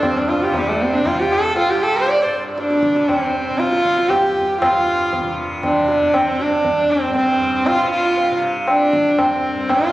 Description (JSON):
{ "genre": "indian classical, Hindustani", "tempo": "118 BPM", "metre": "3/4", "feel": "straight", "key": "C raga durga", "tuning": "A4 = 440 Hz", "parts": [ { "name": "rich sarangi", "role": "melody", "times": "0.0-9.9 s", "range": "G3 to D5", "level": "-17 LUFS", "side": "right 1 dB", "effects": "tape echo" }, { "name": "accordion", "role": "second line", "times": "0.0-2.4 s", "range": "G3 to D5", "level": "-23 LUFS", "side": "right 1 dB", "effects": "none" }, { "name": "tanpura", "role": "drone", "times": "0.0-9.9 s", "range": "C2 to C3", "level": "-26 LUFS", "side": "equal", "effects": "none" }, { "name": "tabla", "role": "percussion", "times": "0.0-9.9 s", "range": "none", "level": "-22 LUFS", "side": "equal", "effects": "none" } ], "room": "moderate concert hall reverb, RT60 2.2 s", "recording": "recorded on a phone in the room, club reverb, compression", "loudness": "-15 LUFS", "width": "side -16 dB against mid", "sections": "0.0-4.6 A section; 4.6-9.9 B section", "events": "none", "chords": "none", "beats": "| 0.03 0.54 1.05 | 1.56 2.07 2.58 | 3.09 3.60 4.11 | 4.62 5.13 5.64 | 6.14 6.65 7.16 | 7.67 8.17 8.68 | 9.19 9.69" }